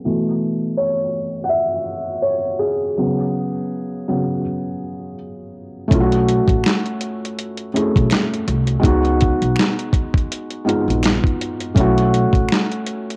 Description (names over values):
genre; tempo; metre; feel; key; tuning
lo-fi hip hop; 82 BPM; 4/4; swing 56% on 16ths; unclear; A4 = 440 Hz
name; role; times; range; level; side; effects
felt-muted upright piano; accompaniment; 0.0-13.2 s; B2 to F#5; -22 LUFS; equal; cassette tape
upright bass; bass; 5.9-12.5 s; A1 to C#2; -22 LUFS; equal; none
dusty soul sampler-style drum kit; drums; 5.9-13.2 s; handclaps, hi-hat, kick drum, snare drum; -20 LUFS; equal; cassette tape
finger snaps; percussion; 6.6-12.7 s; none; -34 LUFS; equal; none
room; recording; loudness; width
light reverb, small room ambience; home recording on cassette, low-pass filter; -19 LUFS; mono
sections
0.0-5.9 A section; 5.9-13.2 B section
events
felt piano solo 0.0-5.9; filter sweep 0.0-5.9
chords
0.1 B9sus4; 3.0 C#7sus4; 5.9 B9sus4; 8.8 C#9sus4; 11.8 B9sus4